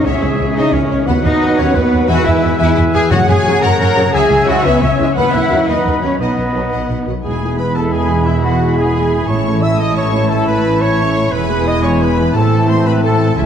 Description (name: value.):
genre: cinematic, heroic adventure film score.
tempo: 118 BPM (dotted quarters).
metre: 6/8.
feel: straight.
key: B major, E major from 7.2 s.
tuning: A4 = 438 Hz.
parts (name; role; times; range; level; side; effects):
warm symphonic violin section; melody; 0.0-13.5 s; G#4 to E6; -27 LUFS; left 4 dB; none.
clear clarinet; second line; 0.0-13.5 s; C4 to D#5; -27 LUFS; left 2 dB; none.
mellow cor anglais; second line; 0.0-13.5 s; E4 to F#5; -26 LUFS; right 1 dB; none.
silver concert flute; second line; 0.0-13.5 s; E5 to B5; -26 LUFS; left 2 dB; none.
warm symphonic viola section; accompaniment; 0.0-13.5 s; E3 to F#5; -24 LUFS; right 1 dB; none.
warm French horn section; sustained chords; 0.0-13.5 s; G#3 to G#4; -22 LUFS; left 3 dB; none.
warm trombone section; sustained chords; 0.0-13.5 s; B2 to A3; -24 LUFS; right 4 dB; none.
concert harp; arpeggios; 0.0-13.5 s; E2 to B5; -22 LUFS; left 9 dB; none.
clear trumpet section; stabs; 0.0-13.5 s; E4 to A#5; -20 LUFS; equal; none.
rich symphonic cello section; bass; 0.0-13.5 s; E2 to A#4; -18 LUFS; right 1 dB; none.
rich symphonic violin section; second line; 0.1-13.5 s; B4 to E6; -27 LUFS; left 3 dB; none.
rich symphonic double bass section; bass; 0.1-13.5 s; E1 to F#2; -18 LUFS; right 3 dB; none.
timpani; percussion; 3.1-3.6 s; F#2; -20 LUFS; left 2 dB; none.
room: moderate scoring stage reverb, RT60 2.0 s.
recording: dark, warm production.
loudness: -11 LUFS.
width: side -8 dB against mid.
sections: 0.0-7.2 A section; 7.2-13.5 B section.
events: none.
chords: 0.1 C#m; 1.1 B/D#; 2.1 E; 3.1 F#; 4.1 C#m; 5.2 B/D#; 6.2 B; 7.2 E; 9.3 A; 11.3 E; 12.3 Am.